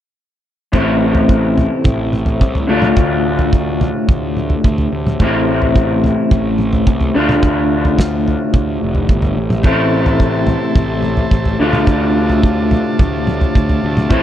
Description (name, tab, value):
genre	psychedelic rock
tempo	108 BPM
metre	4/4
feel	straight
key	unclear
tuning	A4 = 441 Hz
part	electric guitar through a small old amp	riff	0.7-14.2 s	A2 to F4	-16 LUFS	left 1 dB	harmonic tremolo
part	fuzz picked electric bass	bass	0.7-14.2 s	F1 to D2	-19 LUFS	right 1 dB	overdrive
part	pedal harmonium	drone	0.7-14.2 s	A2 to C3	-25 LUFS	left 1 dB	stereo widening
part	cloth-damped thuddy drum kit	drums	0.7-14.2 s	kick drum, snare drum, toms	-15 LUFS	equal	none
part	combo organ	sustained chords	9.7-14.2 s	E4 to A5	-24 LUFS	right 3 dB	none
room	studio reverb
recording	dry, close 1970s-style studio recording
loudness	-12 LUFS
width	side -11 dB against mid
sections	0.7-14.2 A section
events	none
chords	0.7 Am; 2.7 Dm; 5.2 Am; 7.1 Dm; 9.6 Am; 11.6 Dm